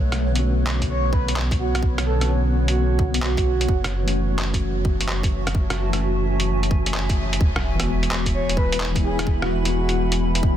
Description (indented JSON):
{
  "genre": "future garage",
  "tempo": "129 BPM",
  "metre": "4/4",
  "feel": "swing 66% on 16ths",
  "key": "unclear",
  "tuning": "A4 = 439 Hz",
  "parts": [
    { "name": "granular cloud pad", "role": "sustained chords", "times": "0.0-10.6 s", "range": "B3 to B5", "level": "-29 LUFS", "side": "right 1 dB", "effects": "built-in reverb, sidechain pumping" },
    { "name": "warm sub bass", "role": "bass", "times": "0.0-10.6 s", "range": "E1 to B1", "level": "-23 LUFS", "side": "equal", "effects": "sidechain pumping" },
    { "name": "lo-fi sampler-style drum kit", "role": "drums", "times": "0.1-10.4 s", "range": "handclaps, hi-hat, rim click", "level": "-28 LUFS", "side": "equal", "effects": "soft clipping on snare" },
    { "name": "tine electric piano", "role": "accompaniment", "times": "0.3-10.6 s", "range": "D3 to F#4", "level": "-28 LUFS", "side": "left 4 dB", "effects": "medium stereo tremolo, sidechain pumping, digital delay" },
    { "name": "electronic kick drum", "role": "drums", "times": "0.8-10.6 s", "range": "none", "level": "-22 LUFS", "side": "equal", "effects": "none" },
    { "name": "breathy flute-like synth lead", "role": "melody", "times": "0.9-3.8, 8.3-10.1 s", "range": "F#4 to C#5", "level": "-28 LUFS", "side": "right 3 dB", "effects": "lush chorus, vintage 12-bit sampler grit, tape echo" },
    { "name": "sub drop", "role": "sound effects", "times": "7.4-9.3 s", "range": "none", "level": "-29 LUFS", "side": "right 1 dB", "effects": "none" }
  ],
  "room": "little or no reverb",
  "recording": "dense, heavily limited modern master",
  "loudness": "-19 LUFS",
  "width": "side -10 dB against mid",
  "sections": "0.0-7.4 A section; 7.4-10.6 B section",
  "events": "band accent 6.9; impact 7.4-9.3",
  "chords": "0.0 Bmadd9; 3.7 F#m7; 7.4 Eadd9",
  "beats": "0.43 0.90 1.36 | 1.83 2.29 2.76 3.23 | 3.69 4.16 4.62 5.08 | 5.55 6.01 6.48 6.95 | 7.41 7.88 8.34 8.81 | 9.27 9.74 10.20"
}